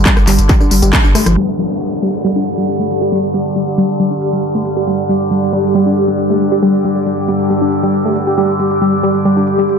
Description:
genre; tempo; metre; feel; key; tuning
driving peak-time techno; 137 BPM; 4/4; straight; unclear; A4 = 441 Hz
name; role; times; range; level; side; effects
saturated sub bass; bass; 0.0-1.4 s; G1; -14 LUFS; equal; tube saturation, sidechain pumping, low-pass filter
overtone-sweeping drone; drone; 0.0-9.8 s; G2 to D3; -19 LUFS; equal; chorus, built-in reverb, phaser, sidechain pumping
warbly dusty pluck; riff; 0.1-9.7 s; F3 to G4; -15 LUFS; equal; chorus, tube saturation, sidechain pumping, analog delay
electronic kick drum; drums; 0.1-1.0 s; none; -12 LUFS; equal; overdrive, studio reverb
techno drum kit; drums; 0.1-9.8 s; handclaps, hi-hat, rim click, tambourine; -17 LUFS; equal; overdrive, low-pass filter on snare, studio reverb, low-pass filter on hats, low-pass filter on perc, analog delay
downlifter; sound effects; 1.4-4.9 s; none; -26 LUFS; equal; none
granular cloud pad; texture; 2.2-9.8 s; G3 to D6; -17 LUFS; equal; built-in reverb, sidechain pumping
room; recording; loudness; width
wet echo chamber reverb, RT60 1.4 s; echo-heavy mix, low-pass filter; -11 LUFS; side -6 dB against mid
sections
0.0-1.4 A section; 1.4-9.8 B section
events
band accent 0.9; filter sweep on drum 1.4-9.8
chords
0.0 G5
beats
0.06 0.49 0.93 | 1.37 1.81 2.25 2.68 | 3.12 3.56 4.00 4.44 | 4.87 5.31 5.75 6.19 | 6.63 7.06 7.50 7.94 | 8.38 8.81 9.25 9.69

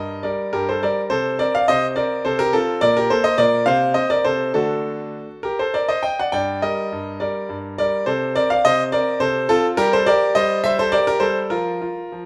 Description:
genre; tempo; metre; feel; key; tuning
classical-period piano sonatina; 69 BPM (dotted quarters); 6/8; rubato; G minor; A4 = 441 Hz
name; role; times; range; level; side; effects
clear concert grand piano; solo; 0.0-12.3 s; G2 to G5; -20 LUFS; equal; none
room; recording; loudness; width
moderate recital hall reverb, RT60 1.7 s; close, detailed microphones, faint mains hum; -20 LUFS; mono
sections
0.0-12.3 A section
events
none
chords
0.0 Gm; 1.1 C7sus2; 2.8 Gm/Bb; 3.7 Cm13; 4.5 D; 6.3 Gm; 8.1 C7sus2; 9.8 C5/G; 11.5 N.C.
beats
0.25 | 1.11 1.97 | 2.81 3.66 | 4.54 5.43 | 6.32 7.20 | 8.07 8.93 | 9.77 10.64 | 11.52

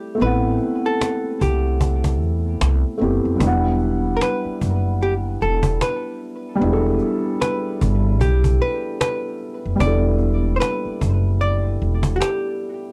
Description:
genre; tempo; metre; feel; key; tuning
lo-fi hip hop; 75 BPM; 4/4; swing 60% on 16ths; E minor; A4 = 440 Hz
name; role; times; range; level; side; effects
hollow-body jazz guitar; melody; 0.0-12.9 s; F#4 to D5; -27 LUFS; equal; tape echo
felt-muted upright piano; accompaniment; 0.0-12.9 s; F#3 to F#5; -26 LUFS; equal; none
upright bass; bass; 0.2-12.2 s; E1 to E2; -22 LUFS; equal; none
cajon; drums; 0.2-12.4 s; none; -26 LUFS; equal; none
room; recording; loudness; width
light reverb; dark, warm production; -20 LUFS; mono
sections
0.0-12.9 A section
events
none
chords
0.0 Am7; 3.4 Em7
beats
| 0.20 1.00 1.80 2.60 | 3.40 4.20 5.00 5.80 | 6.60 7.40 8.20 9.00 | 9.80 10.60 11.40 12.20

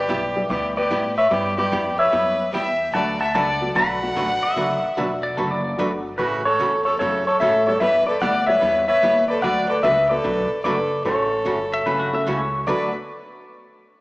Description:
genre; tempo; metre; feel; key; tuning
country, western swing; 148 BPM; 4/4; swing 66% on 8ths; D major; A4 = 441 Hz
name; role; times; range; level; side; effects
clean lap steel guitar; melody; 0.0-12.9 s; F#4 to B5; -20 LUFS; left 1 dB; slapback echo
clear fiddle; second line; 0.0-12.9 s; F#4 to F#5; -27 LUFS; equal; none
upright bass; bass; 0.0-12.9 s; E1 to A2; -32 LUFS; equal; none
archtop guitar, miked and amplified; accompaniment; 0.1-12.9 s; C#3 to B4; -27 LUFS; right 1 dB; slapback echo
honky-tonk upright piano; accompaniment; 0.4-12.9 s; F#3 to A4; -30 LUFS; left 1 dB; none
pedal steel guitar; second line; 4.4-5.9, 11.7-12.9 s; F#4 to E5; -25 LUFS; left 1 dB; none
room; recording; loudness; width
moderate lush hall reverb, RT60 2.5 s; live gig heard through the venue's PA, club reverb, small speaker sound; -18 LUFS; side -20 dB against mid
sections
0.0-12.7 A section; 12.7-14.0 B section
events
none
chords
0.0 G6; 2.9 D6; 6.2 A6; 7.8 G6; 9.4 D6; 11.1 A6; 12.7 D6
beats
0.10 0.50 0.91 | 1.32 1.72 2.13 2.54 | 2.94 3.35 3.75 4.16 | 4.57 4.97 5.38 5.79 | 6.19 6.60 7.00 7.41 | 7.81 8.22 8.62 9.03 | 9.43 9.84 10.24 10.65 | 11.05 11.46 11.86 12.27 | 12.67

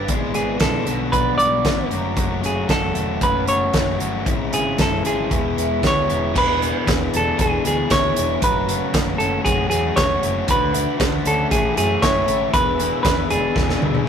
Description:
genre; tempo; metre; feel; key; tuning
indie rock; 116 BPM; 4/4; straight; unclear; A4 = 438 Hz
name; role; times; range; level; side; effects
overdriven electric guitar; riff; 0.0-14.1 s; G#2 to D5; -25 LUFS; left 6 dB; none
overdriven electric guitar; riff; 0.0-14.1 s; E2 to F#4; -28 LUFS; right 3 dB; none
overdriven picked electric bass; bass; 0.0-14.0 s; E1 to F#2; -27 LUFS; equal; none
loose indie drum kit; drums; 0.1-14.1 s; crash cymbal, hi-hat, kick drum, snare drum, toms; -22 LUFS; equal; none
semi-hollow electric guitar; melody; 0.3-14.0 s; G#4 to D5; -21 LUFS; right 1 dB; analog delay
ethereal airy pad; sustained chords; 11.1-14.1 s; A4 to E6; -35 LUFS; right 1 dB; none
room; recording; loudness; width
moderate stone room reverb, RT60 1.5 s; rough rehearsal-room recording, tube saturation; -17 LUFS; side -8 dB against mid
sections
0.0-6.3 A section; 6.3-14.1 B section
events
drum fill 13.6-14.1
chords
0.1 E7/G#; 0.9 Bm7; 1.9 F#m; 4.3 C#m/G#; 5.3 E6; 6.3 E7; 8.4 F#m7; 10.5 Dmaj7; 11.5 A; 12.5 E7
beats
| 0.09 0.61 1.13 1.66 | 2.18 2.70 3.22 3.75 | 4.27 4.79 5.31 5.83 | 6.35 6.87 7.39 7.90 | 8.42 8.94 9.45 9.97 | 10.48 11.00 11.51 12.02 | 12.54 13.05 13.56 14.07

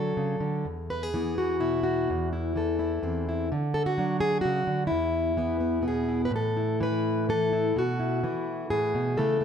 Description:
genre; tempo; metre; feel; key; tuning
folk, solo fingerstyle acoustic guitar; 127 BPM; 3/4; straight; E mixolydian; A4 = 440 Hz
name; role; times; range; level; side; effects
fingerpicked plugged-in steel-string acoustic guitar; solo; 0.0-9.4 s; E2 to B4; -25 LUFS; equal; slapback echo
room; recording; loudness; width
light reverb; close, detailed microphones; -25 LUFS; side -7 dB against mid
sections
0.0-6.3 A section; 6.3-9.4 B section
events
none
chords
0.0 D; 0.7 E; 2.1 Am/E; 3.5 D; 4.9 E5; 6.3 A5; 7.8 Esus2/B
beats
0.17 | 0.66 1.14 1.61 | 2.09 2.56 3.03 | 3.50 3.97 4.43 | 4.90 5.37 5.85 | 6.32 6.80 7.28 | 7.76 8.23 8.70 | 9.17

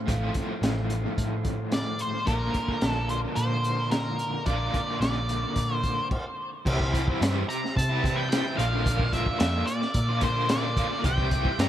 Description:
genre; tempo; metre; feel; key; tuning
psychedelic rock; 109 BPM; 4/4; straight; unclear; A4 = 439 Hz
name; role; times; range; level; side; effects
tonewheel organ; sustained chords; 0.0-11.7 s; G4 to D6; -40 LUFS; right 4 dB; slow rotary speaker, overdrive
overdriven semi-hollow guitar; riff; 0.0-11.7 s; A2 to G4; -30 LUFS; equal; tremolo, analog delay
hollow-body short-scale picked electric bass; bass; 0.1-11.7 s; A1 to C3; -29 LUFS; equal; none
crunchy breakbeat drum kit; drums; 0.1-11.7 s; crash cymbal, hi-hat, kick drum, snare drum; -29 LUFS; equal; analog delay
octave-fuzz lead guitar; melody; 1.7-11.7 s; Bb4 to Bb5; -30 LUFS; equal; distortion, analog delay
room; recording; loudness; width
light reverb, small room ambience; echo-heavy mix; -24 LUFS; side -11 dB against mid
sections
0.0-6.7 A section; 6.7-11.7 B section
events
stop 6.1-6.7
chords
0.0 F/A; 2.3 Bb; 6.7 C; 8.6 Bb; 11.0 C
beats
| 0.07 0.62 1.17 1.72 | 2.27 2.82 3.37 3.92 | 4.47 5.02 5.57 6.11 | 6.66 7.21 7.76 8.31 | 8.85 9.40 9.95 10.50 | 11.04 11.59

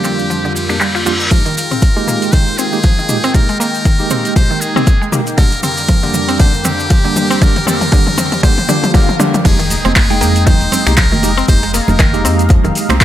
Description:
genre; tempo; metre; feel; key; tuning
afro house; 118 BPM; 4/4; swing 57% on 16ths; F dorian; A4 = 440 Hz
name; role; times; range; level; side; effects
trumpet with metal mute; melody; 0.0-12.2 s; G4 to C5; -19 LUFS; equal; dub echo
warm analog pad; sustained chords; 0.0-13.0 s; F2 to Bb5; -22 LUFS; equal; chorus, sidechain pumping
mallet-like synth pluck; arpeggios; 0.0-13.0 s; D3 to F4; -20 LUFS; equal; chorus, sidechain pumping, dub echo
tine electric piano; stabs; 0.0-13.0 s; F2 to G5; -20 LUFS; right 3 dB; medium stereo tremolo, sidechain pumping, dub echo
deep house drum kit; drums; 0.0-13.0 s; crash cymbal, finger snaps, handclaps, hi-hat, toms; -19 LUFS; left 1 dB; low-pass filter on hats, small room ambience, low-pass filter on snare, low-pass filter on toms, low-pass filter on cymbals
maracas; percussion; 0.0-13.0 s; none; -24 LUFS; right 1 dB; none
reverse cymbal, swell and impact; sound effects; 0.6-1.3, 8.6-11.5 s; none; -23 LUFS; left 1 dB; none
electronic kick drum; drums; 1.3-13.0 s; none; -11 LUFS; equal; small room ambience
round analog bass; bass; 9.5-13.0 s; F1 to F2; -16 LUFS; equal; sidechain pumping
congas; percussion; 9.7-13.0 s; none; -20 LUFS; right 1 dB; none
room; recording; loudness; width
light reverb, digital ambience; none; -10 LUFS; side -12 dB against mid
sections
0.0-1.3 A section; 1.3-9.5 B section; 9.5-13.0 C section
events
filter sweep on analog synth pad 0.0-1.3; reverse cymbal 0.6-1.3; build-up 1.3-9.5; drum fill 1.3-9.5; swell 8.6-9.5; drop 9.5-13.0; impact 9.5-11.5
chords
0.0 Gm/F; 1.3 Fm11; 5.4 Gm/F; 9.5 Fm11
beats
0.30 0.81 | 1.31 1.82 2.33 2.84 | 3.35 3.86 4.37 4.88 | 5.38 5.89 6.40 6.91 | 7.42 7.92 8.43 8.94 | 9.45 9.96 10.47 10.98 | 11.48 11.99 12.50 13.01

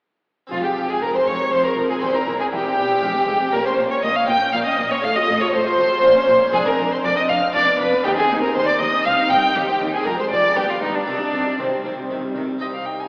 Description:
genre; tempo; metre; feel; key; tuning
classical, baroque-style concerto movement with solo episodes; 119 BPM; 3/4; straight; F minor, C minor from 6.5 s; A4 = 442 Hz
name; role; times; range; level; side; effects
rich symphonic violin section; melody; 0.5-13.1 s; G4 to G6; -29 LUFS; equal; none
rich violin; melody; 0.5-13.1 s; C4 to Ab5; -23 LUFS; equal; none
dark chamber violin section; second line; 0.5-13.1 s; C4 to G5; -24 LUFS; equal; none
harpsichord; accompaniment; 0.5-13.1 s; C2 to Ab4; -32 LUFS; equal; none
rich chamber viola section; accompaniment; 0.5-13.1 s; Eb3 to A4; -30 LUFS; equal; none
dark chamber double bass section; bass; 0.5-12.4 s; E1 to Eb2; -40 LUFS; equal; none
rich chamber cello section; bass; 0.5-13.1 s; C2 to C3; -35 LUFS; equal; none
room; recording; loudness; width
wet concert hall reverb, RT60 2.4 s; heard from further back in the room, AM radio sound; -19 LUFS; mono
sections
0.5-12.6 A section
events
none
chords
0.5 Fm; 2.0 C/E; 3.0 Fm; 3.5 Bbm; 5.0 F/A; 6.0 Bbm; 6.5 Dm7b5/F; 7.5 Bdim/F; 8.0 Cm/Eb; 9.1 Cm; 9.6 Cm/Eb; 10.1 Ddim/F; 10.6 G; 11.1 Cm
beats
| 0.52 1.02 1.52 | 2.03 2.53 3.03 | 3.54 4.04 4.54 | 5.04 5.54 6.04 | 6.54 7.04 7.54 | 8.05 8.55 9.05 | 9.56 10.06 10.57 | 11.08 11.59 12.10 | 12.61

